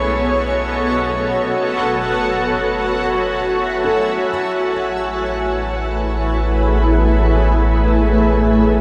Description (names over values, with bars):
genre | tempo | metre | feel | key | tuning
ambient | free time | none | none | A lydian | A4 = 440 Hz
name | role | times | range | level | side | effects
granular cloud pad | sustained chords | 0.0-8.8 s | A3 to A5 | -19 LUFS | equal | built-in reverb
warm sub bass | bass | 0.0-8.8 s | F#1 to B1 | -22 LUFS | equal | none
felt-muted upright piano | arpeggios | 3.8-4.7 s | A4 | -30 LUFS | equal | none
room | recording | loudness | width
wet shimmer reverb, RT60 8.0 s | none | -17 LUFS | mono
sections
0.0-4.3 A section; 4.3-8.8 B section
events
fade-out on sub bass 0.0-4.3; filter sweep on ambient pad 4.3-8.8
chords
0.0 B7; 1.6 F#m7; 4.3 Amaj7